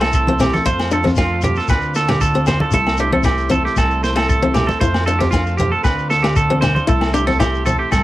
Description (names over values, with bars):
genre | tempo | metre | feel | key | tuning
highlife guitar band | 116 BPM | 4/4 | straight | C major | A4 = 440 Hz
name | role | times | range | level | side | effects
picked old ladder-braced acoustic guitar | accompaniment | 0.0-7.9 s | A3 to E4 | -21 LUFS | left 4 dB | cassette tape
overdriven combo organ | sustained chords | 0.0-8.0 s | A3 to F4 | -27 LUFS | left 2 dB | cassette tape
clean electric guitar | arpeggios | 0.0-8.0 s | F4 to C5 | -19 LUFS | right 3 dB | cassette tape, analog delay
upright bass | bass | 0.0-8.0 s | C2 to F2 | -21 LUFS | equal | none
vintage drum kit | drums | 0.0-8.0 s | kick drum, snare drum | -22 LUFS | equal | cassette tape
agogo bells | percussion | 0.0-8.0 s | none | -28 LUFS | left 6 dB | none
shekere | percussion | 0.0-8.0 s | none | -26 LUFS | left 3 dB | none
congas | percussion | 0.3-7.8 s | none | -23 LUFS | equal | none
room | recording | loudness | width
light reverb | home recording on cassette | -14 LUFS | side -15 dB against mid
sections
0.0-8.0 A section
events
none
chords
0.0 C6; 0.7 F; 1.7 Dm7; 2.7 C6; 4.8 F; 5.8 Dm7; 6.9 C6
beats
0.14 | 0.66 1.18 1.69 2.21 | 2.73 3.25 3.77 4.29 | 4.81 5.33 5.84 6.36 | 6.88 7.40 7.92